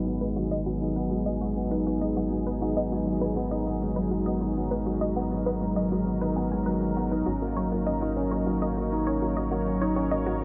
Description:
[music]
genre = electronica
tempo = 100 BPM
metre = 4/4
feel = straight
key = G# minor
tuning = A4 = 441 Hz
[part]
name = lush unison pad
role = sustained chords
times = 0.0-10.4 s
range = F#3 to C#5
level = -34 LUFS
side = equal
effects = chorus
[part]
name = felt-muted upright piano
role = riff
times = 0.0-10.4 s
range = F#3 to D#4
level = -30 LUFS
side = equal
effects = delay
[part]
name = round analog bass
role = bass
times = 0.0-10.4 s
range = G#1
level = -36 LUFS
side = equal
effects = none
[part]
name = analog pluck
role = arpeggios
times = 0.2-10.4 s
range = F#4 to G#5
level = -37 LUFS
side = equal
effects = chorus, phaser, delay
[sound]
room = moderate huge ambient reverb, RT60 4.3 s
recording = low-pass filter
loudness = -27 LUFS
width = mono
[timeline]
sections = 0.0-10.4 A section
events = filter sweep on synth arpeggio sound 0.0-10.4; filter sweep 0.0-10.4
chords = 0.0 G#m7; 7.3 D#m7/G#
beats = | 0.07 0.67 1.26 1.86 | 2.46 3.06 3.67 4.26 | 4.87 5.46 6.07 6.67 | 7.26 7.87 8.46 9.06 | 9.66 10.27

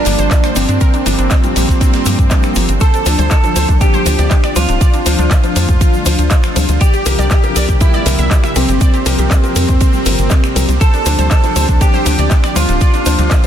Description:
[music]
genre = progressive house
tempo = 120 BPM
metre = 4/4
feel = straight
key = D minor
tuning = A4 = 442 Hz
[part]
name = electric guitar at the edge of break-up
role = melody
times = 0.0-13.5 s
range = C4 to A4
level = -19 LUFS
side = right 1 dB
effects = spring reverb, sidechain pumping, tape echo
[part]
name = soft supersaw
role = second line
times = 0.0-13.5 s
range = C4 to A4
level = -25 LUFS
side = equal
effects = sidechain pumping, dub echo
[part]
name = shimmering ambient pad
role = sustained chords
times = 0.0-13.5 s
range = C3 to E5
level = -22 LUFS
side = right 2 dB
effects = chorus, built-in reverb, sidechain pumping
[part]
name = felt-muted upright piano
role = stabs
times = 0.0-13.5 s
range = G2 to C5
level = -22 LUFS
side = left 6 dB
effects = sidechain pumping, dub echo
[part]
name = damped 70s drum kit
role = drums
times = 0.0-13.4 s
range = ride cymbal, snare drum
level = -30 LUFS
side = right 5 dB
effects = none
[part]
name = wide unison pluck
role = arpeggios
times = 0.1-13.3 s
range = D4 to E5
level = -24 LUFS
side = right 1 dB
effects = cassette tape, sidechain pumping, dub echo
[part]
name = tight sequencer bass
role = bass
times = 0.1-13.3 s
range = D1 to G2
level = -15 LUFS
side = equal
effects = sidechain pumping
[part]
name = house drum kit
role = drums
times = 0.1-13.5 s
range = finger snaps, handclaps, hi-hat, ride cymbal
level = -21 LUFS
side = left 1 dB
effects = soft clipping on snare
[part]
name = egg shaker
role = percussion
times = 0.1-13.5 s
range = none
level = -28 LUFS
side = equal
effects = none
[part]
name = electronic kick drum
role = drums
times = 0.3-13.4 s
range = none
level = -11 LUFS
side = equal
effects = none
[part]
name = congas and bongos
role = percussion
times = 3.2-13.3 s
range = none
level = -27 LUFS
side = left 4 dB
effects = none
[sound]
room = small room ambience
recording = dense, heavily limited modern master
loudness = -10 LUFS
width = side -10 dB against mid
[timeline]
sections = 0.0-13.5 A section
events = none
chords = 0.0 Gm7; 2.8 Dm7; 6.8 C7sus4; 10.8 Dm7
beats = 0.31 | 0.81 1.31 1.81 2.31 | 2.81 3.31 3.81 4.31 | 4.81 5.31 5.81 6.31 | 6.81 7.31 7.81 8.31 | 8.81 9.31 9.81 10.31 | 10.81 11.31 11.81 12.31 | 12.81 13.31

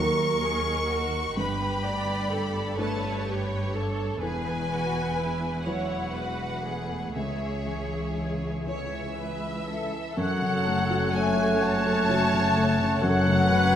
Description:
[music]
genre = cinematic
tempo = 39-43 BPM (dotted quarters)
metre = 6/8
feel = rubato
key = F# dorian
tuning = A4 = 441 Hz
[part]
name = warm symphonic violin section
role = melody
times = 0.0-13.8 s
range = F#4 to C#6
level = -34 LUFS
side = left 3 dB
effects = none
[part]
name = clear symphonic violin section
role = second line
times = 0.0-13.8 s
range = E4 to A5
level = -31 LUFS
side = left 1 dB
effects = none
[part]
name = clear symphonic viola section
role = accompaniment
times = 0.0-13.8 s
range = A3 to D5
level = -33 LUFS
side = right 2 dB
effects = none
[part]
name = felt-muted upright piano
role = accompaniment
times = 0.0-13.8 s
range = C#2 to F#5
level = -32 LUFS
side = equal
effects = none
[part]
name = concert harp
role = arpeggios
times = 0.0-13.8 s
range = F#2 to G#5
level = -36 LUFS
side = left 3 dB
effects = none
[part]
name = rich symphonic cello section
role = bass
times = 0.0-13.8 s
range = C#2 to G2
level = -33 LUFS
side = right 2 dB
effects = none
[part]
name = rich symphonic double bass section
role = bass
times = 0.0-13.8 s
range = E1 to D#2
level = -34 LUFS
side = right 2 dB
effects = none
[part]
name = mellow French horn section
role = sustained chords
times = 8.7-13.8 s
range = E3 to A3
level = -28 LUFS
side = left 2 dB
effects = none
[part]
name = clear clarinet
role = second line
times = 10.2-13.8 s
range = C#4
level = -35 LUFS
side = left 3 dB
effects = none
[part]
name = clear oboe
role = second line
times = 10.2-13.8 s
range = C#5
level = -33 LUFS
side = right 2 dB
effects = none
[part]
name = hollow silver concert flute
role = second line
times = 10.2-13.8 s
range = F#6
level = -33 LUFS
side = left 2 dB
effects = none
[sound]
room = wet recital hall reverb, RT60 1.4 s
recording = none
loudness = -24 LUFS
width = side -9 dB against mid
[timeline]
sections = 0.0-10.2 A section; 10.2-13.8 B section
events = none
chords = 0.0 D#m; 1.4 Gadd9; 4.2 Esus2; 7.2 C#m; 10.2 F#m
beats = | 1.38 2.78 | 4.21 5.66 | 7.15 8.67 | 10.17 11.60 | 13.02

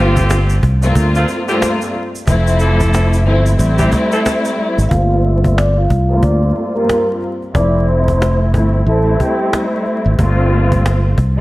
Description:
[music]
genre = hip hop, boom-bap hip-hop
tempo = 91 BPM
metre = 4/4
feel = swing 61% on 16ths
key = G dorian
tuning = A4 = 437 Hz
[part]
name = dark symphonic string section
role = accompaniment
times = 0.0-11.4 s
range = G2 to F4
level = -17 LUFS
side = left 1 dB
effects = cassette tape, high-pass filter, low-pass filter
[part]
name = bright saxophone section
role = stabs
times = 0.0-4.2 s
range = D3 to A4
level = -22 LUFS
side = right 1 dB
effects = high-pass filter, low-pass filter, slapback echo
[part]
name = fingered electric bass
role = bass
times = 0.0-11.4 s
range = F1 to D2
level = -13 LUFS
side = equal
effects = none
[part]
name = cajon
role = drums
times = 0.2-11.4 s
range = none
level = -19 LUFS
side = equal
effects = none
[part]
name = egg shaker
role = percussion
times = 0.2-4.9 s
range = none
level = -33 LUFS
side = right 5 dB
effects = none
[part]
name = vibraphone with soft mallets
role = melody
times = 4.9-9.5 s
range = F4 to E6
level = -18 LUFS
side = equal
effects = high-pass filter, low-pass filter, slapback echo
[sound]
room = light reverb, small room ambience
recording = vinyl crackle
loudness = -12 LUFS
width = side -18 dB against mid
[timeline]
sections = 0.0-4.9 A section; 4.9-11.4 B section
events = filter sweep 4.9-11.4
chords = 0.0 Gm11; 2.3 Dm7/F; 3.6 Am7; 4.9 Gm11; 7.5 Dm7/F; 8.9 Am7; 10.2 Gm11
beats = 0.30 0.96 1.61 | 2.27 2.93 3.59 4.25 | 4.91 5.57 6.23 6.89 | 7.55 8.21 8.87 9.53 | 10.19 10.85

